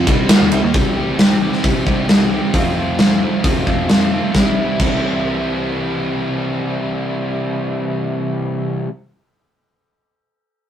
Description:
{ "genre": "classic rock", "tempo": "133 BPM", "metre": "4/4", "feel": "straight", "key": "C major", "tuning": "A4 = 440 Hz", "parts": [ { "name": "overdriven electric guitar", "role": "riff", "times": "0.0-8.9 s", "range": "F2 to G4", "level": "-19 LUFS", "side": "equal", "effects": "none" }, { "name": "picked electric bass", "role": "bass", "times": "0.0-8.8 s", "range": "A1 to Bb2", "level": "-24 LUFS", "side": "equal", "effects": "none" }, { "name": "big rock drum kit", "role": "drums", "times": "0.1-4.9 s", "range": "crash cymbal, hi-hat, kick drum, ride cymbal, snare drum", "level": "-15 LUFS", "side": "equal", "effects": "none" } ], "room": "light reverb", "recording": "rough rehearsal-room recording, warm saturation", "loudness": "-15 LUFS", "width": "side -10 dB against mid", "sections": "0.7-4.3 A section; 4.3-7.9 B section", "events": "none", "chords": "0.0 C5; 0.7 C; 2.5 F; 4.3 C", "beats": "0.28 | 0.73 1.18 1.63 2.08 | 2.53 2.98 3.43 3.88 | 4.34 4.79 5.24 5.69 | 6.14 6.59 7.05 7.50" }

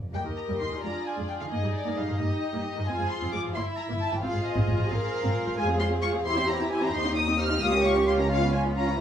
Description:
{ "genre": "quick classical-period movement for string orchestra", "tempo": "88 BPM (dotted quarters)", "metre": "6/8", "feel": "rubato", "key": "unclear", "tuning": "A4 = 440 Hz", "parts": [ { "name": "dark studio double bass section", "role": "bass", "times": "0.0-9.0 s", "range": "G1 to G2", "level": "-30 LUFS", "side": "equal", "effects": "none" }, { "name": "warm studio cello section", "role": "bass", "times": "0.0-9.0 s", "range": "F2 to Bb4", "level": "-31 LUFS", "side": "right 2 dB", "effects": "none" }, { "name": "rich studio violin section", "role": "melody", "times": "0.1-9.0 s", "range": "D5 to F6", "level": "-31 LUFS", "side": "left 2 dB", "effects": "none" }, { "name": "dark studio violin section", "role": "second line", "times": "0.1-9.0 s", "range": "Eb4 to F5", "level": "-33 LUFS", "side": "left 3 dB", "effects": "none" }, { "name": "warm studio viola section", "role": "accompaniment", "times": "0.1-9.0 s", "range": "D3 to Ab4", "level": "-32 LUFS", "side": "right 1 dB", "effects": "none" } ], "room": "light reverb", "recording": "small room ambience", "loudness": "-24 LUFS", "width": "side -9 dB against mid", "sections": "0.1-9.0 A section", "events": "none", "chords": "0.1 Eb; 0.8 Ddim; 1.5 Eb/G; 2.9 Fm; 3.6 Em; 4.2 Fm/Ab; 5.6 Fm; 6.3 C/E; 6.9 Cm/Eb; 7.6 Bbm/Db; 8.3 Db7", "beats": "| 0.14 0.83 | 1.52 2.20 | 2.88 3.55 | 4.23 4.90 | 5.57 6.25 | 6.94 7.62 | 8.30" }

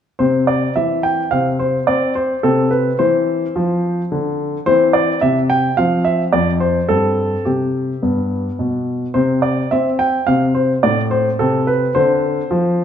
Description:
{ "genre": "classical-period piano sonatina", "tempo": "107 BPM", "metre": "4/4", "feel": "straight", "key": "C major", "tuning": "A4 = 440 Hz", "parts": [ { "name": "clear baby grand piano", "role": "solo", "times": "0.2-12.8 s", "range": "F2 to G5", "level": "-14 LUFS", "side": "equal", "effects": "none" } ], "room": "wet recital hall reverb, RT60 1.4 s", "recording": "minimal, uncompressed stereo recording", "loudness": "-14 LUFS", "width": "side -8 dB against mid", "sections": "0.2-12.8 A section", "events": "none", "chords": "0.2 C; 1.3 N.C.; 2.4 F5/C; 4.7 C/E; 5.8 F5; 6.9 C5/G; 8.0 G; 9.2 N.C.; 10.3 Amadd11; 11.4 F5/C", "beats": "| 0.19 0.76 1.32 1.89 | 2.45 3.01 3.57 4.12 | 4.68 5.22 5.78 6.33 | 6.90 7.46 8.03 8.59 | 9.16 9.72 10.28 10.84 | 11.40 11.95 12.51" }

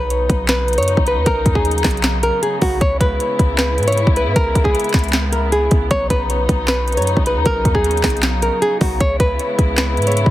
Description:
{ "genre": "hip hop, trap", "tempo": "155 BPM", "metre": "4/4", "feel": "half-time", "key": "B major", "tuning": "A4 = 441 Hz", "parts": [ { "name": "nylon-string guitar", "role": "melody", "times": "0.0-10.3 s", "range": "F#4 to C#5", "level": "-19 LUFS", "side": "equal", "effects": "ping-pong delay" }, { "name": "muted studio string section", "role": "sustained chords", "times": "0.0-10.3 s", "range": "C#3 to E4", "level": "-23 LUFS", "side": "left 2 dB", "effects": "none" }, { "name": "clean 808-style bass", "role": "bass", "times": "0.0-10.3 s", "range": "B1 to G#2", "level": "-20 LUFS", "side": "equal", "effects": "none" }, { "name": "trap drum kit", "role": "drums", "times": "0.1-10.3 s", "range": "handclaps, hi-hat, kick drum, snare drum", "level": "-18 LUFS", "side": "equal", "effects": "none" } ], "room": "studio reverb", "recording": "heavily compressed radio sound, multiband compression", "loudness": "-14 LUFS", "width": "side -14 dB against mid", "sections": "0.0-10.3 A section", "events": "none", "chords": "0.0 Badd9; 2.8 C#m7; 5.9 Badd9; 9.0 C#m7", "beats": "0.10 0.49 0.88 | 1.26 1.65 2.04 2.42 | 2.81 3.20 3.59 3.97 | 4.36 4.75 5.13 5.52 | 5.91 6.30 6.68 7.07 | 7.46 7.84 8.23 8.62 | 9.01 9.39 9.78 10.17" }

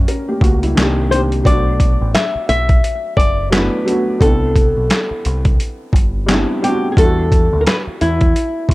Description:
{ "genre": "lo-fi hip hop", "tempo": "87 BPM", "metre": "4/4", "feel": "swing 58% on 16ths", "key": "E minor", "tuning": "A4 = 440 Hz", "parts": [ { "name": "felt-muted upright piano", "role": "accompaniment", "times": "0.0-8.7 s", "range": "Eb3 to A#4", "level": "-20 LUFS", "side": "equal", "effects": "low-pass filter" }, { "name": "deep dub picked electric bass", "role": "bass", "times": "0.0-8.7 s", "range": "F#1 to E2", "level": "-18 LUFS", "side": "equal", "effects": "none" }, { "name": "boom bap sampler-style drum kit", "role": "drums", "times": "0.1-8.7 s", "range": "handclaps, hi-hat, kick drum, snare drum", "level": "-15 LUFS", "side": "equal", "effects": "none" }, { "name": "flamenco guitar", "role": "melody", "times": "1.1-8.7 s", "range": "E4 to E5", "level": "-18 LUFS", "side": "left 1 dB", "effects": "low-pass filter, analog delay" } ], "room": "light reverb, small room ambience", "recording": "none", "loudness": "-13 LUFS", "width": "side -19 dB against mid", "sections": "0.0-8.7 A section", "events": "none", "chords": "0.0 F#7b9; 0.8 Cm7; 1.4 Bm7; 4.2 Am11; 7.0 Em9", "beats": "0.07 0.76 | 1.45 2.14 2.83 3.52 | 4.21 4.90 5.59 6.28 | 6.97 7.66 8.35" }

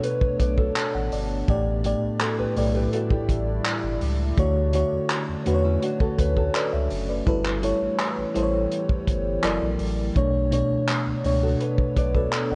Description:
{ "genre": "contemporary R&B", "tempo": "83 BPM", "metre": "4/4", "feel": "straight", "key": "D major", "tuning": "A4 = 443 Hz", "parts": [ { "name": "FM electric piano with soft pad layer", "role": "accompaniment", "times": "0.0-12.6 s", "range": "A2 to A5", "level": "-28 LUFS", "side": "equal", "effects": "chorus, tremolo" }, { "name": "deep dark ambient pad", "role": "sustained chords", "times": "0.2-12.6 s", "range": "B2 to G4", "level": "-36 LUFS", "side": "equal", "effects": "chorus, built-in reverb, sidechain pumping" }, { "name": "nylon-string guitar", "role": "arpeggios", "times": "0.0-12.6 s", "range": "C#4 to D5", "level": "-32 LUFS", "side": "equal", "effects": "digital delay" }, { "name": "warm soul drum kit", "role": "drums", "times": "0.0-12.5 s", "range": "handclaps, hi-hat, kick drum", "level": "-29 LUFS", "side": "equal", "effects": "none" }, { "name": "warm sub bass", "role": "bass", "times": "0.2-12.6 s", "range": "F#1 to E2", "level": "-29 LUFS", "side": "equal", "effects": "none" } ], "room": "light reverb, small room reverb", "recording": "worn, warbling old tape, cassette tape, warbly pitch drift, nothing above 10.6 kHz", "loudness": "-24 LUFS", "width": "mono", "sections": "0.0-12.6 A section", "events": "FM electric piano fill 0.4-1.5", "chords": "0.0 Bm9; 1.5 A7sus4; 4.4 Dmaj7; 7.3 G69; 9.4 F#7alt; 10.2 Bm9", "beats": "0.04 0.76 | 1.48 2.21 2.93 3.65 | 4.37 5.10 5.82 6.54 | 7.27 7.99 8.71 9.44 | 10.16 10.88 11.60 12.33" }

